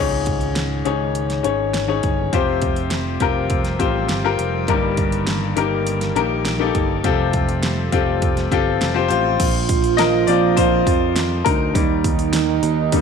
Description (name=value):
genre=piano-driven pop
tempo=102 BPM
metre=4/4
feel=straight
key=unclear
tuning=A4 = 440 Hz
part: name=bright upright piano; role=accompaniment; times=0.0-13.0 s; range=G2 to Eb5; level=-20 LUFS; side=left 8 dB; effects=none
part: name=lush unison pad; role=sustained chords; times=0.0-9.4 s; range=Eb3 to Db4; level=-30 LUFS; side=right 2 dB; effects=chorus
part: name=modern bright picked electric bass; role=bass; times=0.0-13.0 s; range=F1 to F2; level=-23 LUFS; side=right 2 dB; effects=none
part: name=pop drum kit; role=drums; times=0.3-13.0 s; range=crash cymbal, hi-hat, kick drum, snare drum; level=-23 LUFS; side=right 2 dB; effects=none
part: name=mellow French horn section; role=second line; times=9.4-13.0 s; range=Eb3 to F4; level=-20 LUFS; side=right 14 dB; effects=none
room=moderate echo chamber reverb, RT60 1.7 s, digital ambience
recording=1960s-style stereo with parts hard left and right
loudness=-16 LUFS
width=side -6 dB against mid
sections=0.0-9.4 A section; 9.4-13.0 B section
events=upright piano solo 9.4-13.0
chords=0.0 Dbsus2; 2.3 Fsus2; 4.7 Eb/G; 7.0 Fadd9; 9.4 Bbsus2; 11.7 Eb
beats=0.57 1.16 1.74 | 2.33 2.92 3.51 4.10 | 4.69 5.28 5.86 6.45 | 7.04 7.63 8.22 8.81 | 9.39 9.98 10.57 11.16 | 11.75 12.34 12.92